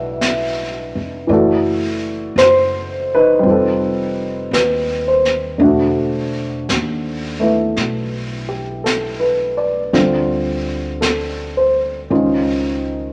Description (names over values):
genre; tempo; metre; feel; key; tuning
jazz ballad; 56 BPM; 4/4; swing 68% on 8ths; unclear; A4 = 441 Hz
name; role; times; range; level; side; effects
dark baby grand piano; accompaniment; 0.0-13.1 s; D3 to F#5; -18 LUFS; equal; none
upright bass; bass; 0.0-13.1 s; E1 to Eb2; -29 LUFS; equal; none
jazz brush drum kit; drums; 0.2-13.1 s; brushed snare drum, hi-hat, snare drum; -26 LUFS; equal; none
room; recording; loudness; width
wet large studio reverb, RT60 1.4 s; none; -17 LUFS; mono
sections
0.0-13.1 A section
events
none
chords
0.0 Gmaj7; 1.3 D13/F#; 3.4 F7#11; 5.6 Esus2; 9.9 Dm7; 12.1 C#add9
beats
0.20 | 1.29 2.37 3.44 4.52 | 5.61 6.68 7.77 8.85 | 9.93 11.02 12.10